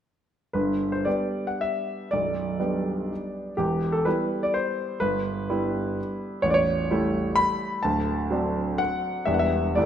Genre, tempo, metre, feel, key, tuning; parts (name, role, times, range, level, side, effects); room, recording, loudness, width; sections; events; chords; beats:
classical, romantic triple-time dance for piano with dotted rhythms; 107-137 BPM; 3/4; rubato; G major; A4 = 439 Hz
clear grand piano; solo; 0.5-9.9 s; A0 to B5; -23 LUFS; equal
wet recital hall reverb, RT60 1.6 s; -23 LUFS; side -9 dB against mid
0.5-9.9 A section
0.5 G; 2.1 G/B; 3.6 Em; 5.0 Em/G; 6.4 A7; 7.8 D7; 9.3 Em7
| 0.55 1.06 1.61 | 2.11 2.60 3.11 | 3.58 4.06 4.55 | 5.01 5.49 5.98 | 6.43 6.90 7.37 | 7.83 8.30 8.79 | 9.26 9.77